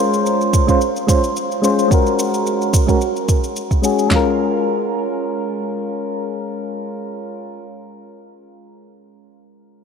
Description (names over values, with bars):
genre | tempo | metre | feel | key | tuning
sunset chillout | 109 BPM | 4/4 | swing 54% on 16ths | Bb minor | A4 = 441 Hz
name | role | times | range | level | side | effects
soft electric-piano-like synth keys | accompaniment | 0.0-7.7 s | Ab3 to C5 | -18 LUFS | moving between left 4 dB and right 4 dB | chorus, auto-pan, low-pass filter, tape echo
shaker | drums | 0.1-4.1 s | none | -28 LUFS | left 1 dB | none
deep house drum kit | drums | 0.5-4.2 s | handclaps, kick drum, snare drum, toms | -16 LUFS | right 1 dB | none
room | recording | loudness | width
wet cathedral reverb, RT60 5.1 s | dreamy mix soaked in reverb | -15 LUFS | side -6 dB against mid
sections
0.0-4.1 A section; 4.1-6.3 B section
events
filter sweep on synth keys 0.0-4.1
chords
0.0 Dbmaj7; 1.9 Ab9sus4; 4.1 Bbm7